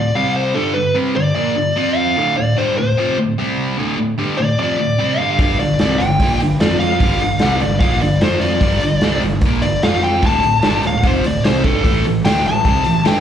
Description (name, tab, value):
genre	blues rock power trio and southern rock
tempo	149 BPM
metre	4/4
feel	straight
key	unclear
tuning	A4 = 443 Hz
part	fuzz lead guitar	melody	0.0-13.2 s	A4 to A5	-18 LUFS	left 1 dB	distortion, slapback echo
part	overdriven electric guitar	riff	0.0-13.2 s	D2 to G4	-18 LUFS	equal	slapback echo
part	fuzz picked electric bass	bass	5.4-13.2 s	D1 to G2	-22 LUFS	equal	overdrive
part	raw garage drum kit	drums	5.4-13.2 s	hi-hat, kick drum, snare drum	-18 LUFS	equal	none
room	light reverb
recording	live gig heard through the venue's PA, club reverb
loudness	-14 LUFS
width	side -9 dB against mid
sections	0.0-13.2 A section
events	none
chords	0.1 C5; 0.6 Gm7; 1.8 F5; 2.2 Dm7; 3.4 C5; 3.8 Dm7; 5.4 Gm7; 6.6 F5; 7.0 Gm7; 8.2 F5; 8.6 Gm7; 9.8 F5; 10.2 Dm7; 11.9 Am7